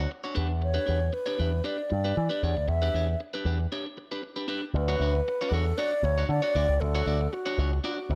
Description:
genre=disco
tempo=117 BPM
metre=4/4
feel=straight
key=unclear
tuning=A4 = 441 Hz
part: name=electric guitar at the edge of break-up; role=accompaniment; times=0.0-8.1 s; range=D4 to D5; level=-36 LUFS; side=equal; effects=spring reverb
part: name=picked electric bass with an envelope filter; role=bass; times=0.0-8.2 s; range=C#2 to E3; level=-29 LUFS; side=equal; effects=none
part: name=wooden-headed alto flute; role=melody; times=0.6-8.2 s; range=F#4 to E5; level=-32 LUFS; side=equal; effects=none
room=small room ambience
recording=none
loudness=-28 LUFS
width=mono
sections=0.0-4.7 A section; 4.7-8.2 B section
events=break 3.7-4.7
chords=0.4 Em7; 4.7 Dmaj7

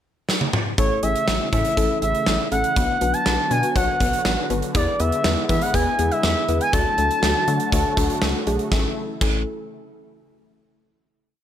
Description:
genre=synth-pop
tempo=121 BPM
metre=4/4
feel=straight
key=A major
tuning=A4 = 435 Hz
part: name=gated 80s drum kit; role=drums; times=0.3-9.3 s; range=crash cymbal, hi-hat, kick drum, snare drum, toms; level=-23 LUFS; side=right 1 dB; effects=gated reverb
part: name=expressive portamento lead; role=melody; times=0.8-8.2 s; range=C#5 to A5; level=-22 LUFS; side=equal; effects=chorus, analog delay
part: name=soft round pluck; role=accompaniment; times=0.8-9.4 s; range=A3 to C#5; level=-26 LUFS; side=left 4 dB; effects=chorus
part: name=sweeping resonant pad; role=sustained chords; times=0.8-8.9 s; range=C#3 to F#4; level=-30 LUFS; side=equal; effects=chorus
part: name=rubbery square bass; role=bass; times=0.8-9.4 s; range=G#1 to E3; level=-25 LUFS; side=equal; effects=none
room=light reverb, studio reverb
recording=none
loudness=-18 LUFS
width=side -10 dB against mid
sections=0.0-0.8 pickup bar; 0.8-8.7 verse; 8.7-10.7 final chord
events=drum fill 0.3-0.8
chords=0.0 N.C.; 0.8 A; 2.8 Bm; 4.7 E7; 6.7 D; 8.7 A

